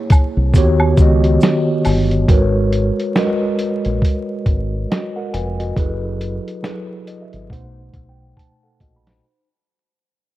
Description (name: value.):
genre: lo-fi hip hop.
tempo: 69 BPM.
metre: 4/4.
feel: swing 58% on 16ths.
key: G# minor.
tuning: A4 = 435 Hz.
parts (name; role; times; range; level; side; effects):
nylon-string guitar; melody; 0.0-1.8 s; C#5; -48 LUFS; left 1 dB; none.
mellow tine electric piano; accompaniment; 0.0-9.5 s; B2 to B5; -19 LUFS; equal; medium stereo tremolo, low-pass filter.
lo-fi sampler-style drum kit; drums; 0.1-9.2 s; hi-hat, kick drum, snare drum; -15 LUFS; equal; none.
tube shaker and woodblock; percussion; 0.1-2.1 s; none; -24 LUFS; equal; none.
deep dub fingered electric bass; bass; 0.4-9.2 s; E#1 to D#2; -18 LUFS; equal; none.
room: little or no reverb.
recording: dark, warm production, vinyl crackle.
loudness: -14 LUFS.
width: side -15 dB against mid.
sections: 0.0-2.3 A section; 2.3-9.2 B section.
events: fade-out 2.3-9.2; tine electric piano fill 6.6-9.2; drum fill 8.4-9.2.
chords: 0.0 A#m7b5; 0.5 D#7alt; 2.3 G#m11; 5.8 F#m11; 7.5 B7b9.